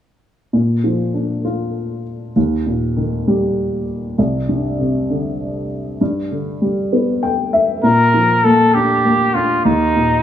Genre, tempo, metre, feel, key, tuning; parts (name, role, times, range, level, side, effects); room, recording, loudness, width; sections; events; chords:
six-eight pop ballad; 66 BPM (dotted quarters); 6/8; straight; A4 = 440 Hz
dark upright piano; accompaniment; 0.5-10.2 s; C2 to G5; -16 LUFS; left 1 dB
clear flugelhorn; melody; 7.8-10.2 s; Eb4 to Bb4; -14 LUFS; equal
light reverb; small room ambience; -15 LUFS; side -10 dB against mid
0.5-7.8 A section; 7.8-10.2 B section
upright piano fill 6.9-7.8
0.5 Bb; 2.4 Eb; 4.2 Csus2; 6.0 G; 7.8 Bb; 9.7 Eb5